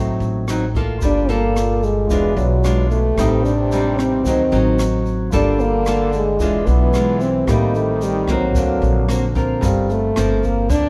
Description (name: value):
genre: bossa nova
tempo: 111 BPM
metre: 4/4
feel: straight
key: G minor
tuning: A4 = 440 Hz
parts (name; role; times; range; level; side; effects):
- mellow French horn; melody; 0.0-10.9 s; F#3 to D4; -22 LUFS; equal; none
- dark concert grand piano; accompaniment; 0.0-10.9 s; F4 to Eb6; -32 LUFS; equal; none
- nylon-string guitar; accompaniment; 0.0-10.9 s; G2 to A#4; -24 LUFS; equal; none
- upright bass; bass; 0.0-10.9 s; E1 to D2; -23 LUFS; equal; none
- jazz brush drum kit; drums; 0.2-10.8 s; hi-hat, kick drum, rim click; -26 LUFS; equal; none
- tube shaker; percussion; 0.2-10.9 s; none; -42 LUFS; equal; none
- breathy trombone; second line; 1.0-9.3 s; Bb2 to E3; -29 LUFS; equal; none
room: light reverb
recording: dark, warm production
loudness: -18 LUFS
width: mono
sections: 0.0-9.6 A section; 9.6-10.9 B section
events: none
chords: 0.0 D7b9 (rootless); 1.0 Gm9; 2.1 E7b9; 3.2 Am7b5; 4.2 D7b9; 5.3 Gm9; 6.4 E7b9; 7.5 Am7b5; 8.6 D7alt; 9.6 Gm11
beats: 0.47 | 1.01 1.55 2.09 2.63 | 3.17 3.71 4.24 4.78 | 5.32 5.86 6.40 6.93 | 7.47 8.01 8.55 9.09 | 9.63 10.16 10.70